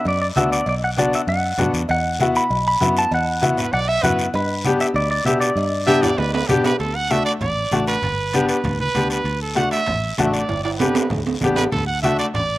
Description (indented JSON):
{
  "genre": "latin, cumbia",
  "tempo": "196 BPM",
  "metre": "4/4",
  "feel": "straight",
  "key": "G major",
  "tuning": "A4 = 438 Hz",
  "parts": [
    { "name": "clean electric guitar", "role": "melody", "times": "0.0-6.4 s", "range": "B4 to B5", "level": "-21 LUFS", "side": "equal", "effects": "spring reverb" },
    { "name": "congas", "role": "percussion", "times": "0.0-12.5 s", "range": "none", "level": "-27 LUFS", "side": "equal", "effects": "none" },
    { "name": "fingered electric bass", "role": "bass", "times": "0.1-12.6 s", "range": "G1 to B2", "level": "-25 LUFS", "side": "equal", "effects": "none" },
    { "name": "cowbell and timbales", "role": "percussion", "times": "0.1-12.5 s", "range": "none", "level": "-28 LUFS", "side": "right 4 dB", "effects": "slapback echo" },
    { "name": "guiro", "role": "percussion", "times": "0.1-12.6 s", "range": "none", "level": "-31 LUFS", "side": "left 3 dB", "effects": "slapback echo" },
    { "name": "bright upright piano", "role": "accompaniment", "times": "0.4-12.3 s", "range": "A3 to G4", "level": "-20 LUFS", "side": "left 2 dB", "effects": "slapback echo" },
    { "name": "brilliant trumpet", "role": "second line", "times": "3.6-12.6 s", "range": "G4 to F#5", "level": "-23 LUFS", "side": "right 3 dB", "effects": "slapback echo" }
  ],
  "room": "little or no reverb",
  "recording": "recorded outdoors, with no room sound",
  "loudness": "-17 LUFS",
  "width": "side -17 dB against mid",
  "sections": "0.0-6.8 A section; 6.8-12.6 B section",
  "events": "drum fill 6.0-6.8, 10.5-11.7; trumpet solo 6.8-12.6",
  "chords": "0.0 Bm; 1.9 Esus2; 4.3 G; 6.8 D; 8.0 G; 9.3 D; 10.5 G; 11.7 D",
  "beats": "0.05 0.36 | 0.67 0.97 1.28 1.58 | 1.89 2.20 2.50 2.81 | 3.12 3.42 3.73 4.04 | 4.34 4.65 4.96 5.26 | 5.57 5.88 6.18 6.49 | 6.80 7.10 7.41 7.72 | 8.03 8.33 8.64 8.95 | 9.26 9.56 9.87 10.18 | 10.49 10.80 11.11 11.41 | 11.72 12.03 12.34"
}